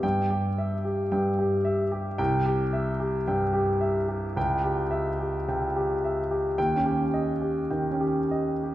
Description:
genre	classical, romantic character piece for solo piano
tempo	110 BPM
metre	4/4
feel	uneven beats, rubato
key	unclear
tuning	A4 = 439 Hz
part	warm concert grand piano	solo	0.0-8.7 s	C2 to G5	-24 LUFS	equal	none
room	wet recital hall reverb, RT60 1.7 s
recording	recorded in a church or concert hall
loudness	-24 LUFS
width	side -14 dB against mid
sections	0.0-8.7 A section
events	none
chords	0.0 Em/G; 2.2 C; 4.4 C#dim; 6.6 Eb7

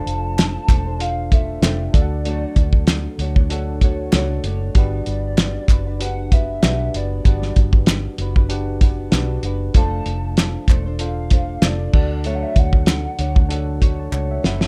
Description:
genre	indie pop, bedroom pop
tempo	96 BPM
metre	4/4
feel	swing 55% on 16ths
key	unclear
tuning	A4 = 441 Hz
part	hollow clarinet-like synth lead	melody	0.0-13.8 s	D5 to A5	-32 LUFS	equal	lush chorus, slapback echo
part	nylon-string guitar	accompaniment	0.0-14.7 s	D3 to C#5	-34 LUFS	equal	analog chorus, warbly pitch drift
part	tine electric piano	accompaniment	0.0-14.7 s	D4 to C#6	-32 LUFS	equal	cassette tape
part	vintage muted fingered electric bass	bass	0.1-14.7 s	E1 to D2	-25 LUFS	equal	none
part	cloth-damped thuddy drum kit	drums	0.1-14.7 s	crash cymbal, hi-hat, kick drum, snare drum	-18 LUFS	equal	vintage 12-bit sampler grit
part	group handclap	percussion	0.4-14.3 s	none	-33 LUFS	equal	none
room	little or no reverb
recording	rough home demo mix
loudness	-19 LUFS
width	mono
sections	0.0-14.7 A section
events	tine electric piano fill 13.5-14.7; drum fill 14.1-14.7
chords	0.0 F6; 1.9 Dmaj7; 4.8 Gmaj7; 9.8 F6; 11.9 Dmaj7

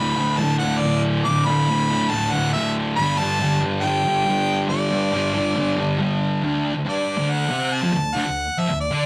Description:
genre	rock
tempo	139 BPM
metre	4/4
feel	straight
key	D mixolydian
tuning	A4 = 440 Hz
part	bright harmonica	melody	0.0-9.1 s	D5 to D6	-26 LUFS	equal	overdrive
part	thick fuzz guitar	riff	0.0-9.1 s	D2 to D4	-23 LUFS	equal	distortion
room	moderate small room reverb, RT60 0.6 s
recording	rough rehearsal-room recording, warm saturation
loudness	-21 LUFS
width	mono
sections	0.0-6.4 A section; 6.4-9.1 B section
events	none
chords	0.0 D5; 3.0 G5; 6.4 D

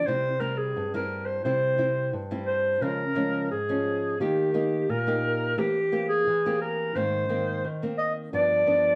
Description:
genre	samba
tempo	87 BPM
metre	4/4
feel	straight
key	unclear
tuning	A4 = 440 Hz
part	warm clarinet	melody	0.0-9.0 s	G4 to Eb5	-28 LUFS	equal	plate reverb
part	nylon-string guitar	accompaniment	0.0-9.0 s	G2 to G4	-32 LUFS	equal	none
room	wet studio reverb, RT60 0.5 s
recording	heard from further back in the room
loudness	-26 LUFS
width	mono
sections	0.0-9.0 A section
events	none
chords	0.1 C; 2.8 Db; 4.2 Eb; 5.6 C7/E; 7.0 Abadd9; 8.3 G7

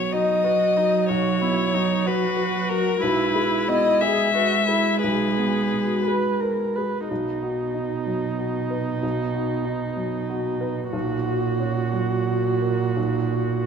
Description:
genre	neoclassical piano and strings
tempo	57-64 BPM (dotted quarters)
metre	6/8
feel	rubato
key	B major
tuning	A4 = 440 Hz
part	muted violin	melody	0.0-6.0 s	A#4 to E5	-22 LUFS	left 4 dB	none
part	muted cello	second line	0.0-13.7 s	A#2 to G#3	-26 LUFS	right 5 dB	none
part	warm upright piano	accompaniment	0.0-13.7 s	B1 to B4	-27 LUFS	left 2 dB	none
part	muted viola	accompaniment	0.1-13.7 s	D#4 to B4	-28 LUFS	right 4 dB	none
room	moderate concert hall reverb, RT60 2.2 s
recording	minimal, uncompressed stereo recording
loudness	-20 LUFS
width	side -6 dB against mid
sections	0.0-7.1 A section; 7.1-13.7 B section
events	none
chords	0.0 B; 3.0 E/B; 7.1 B; 10.9 F#/B

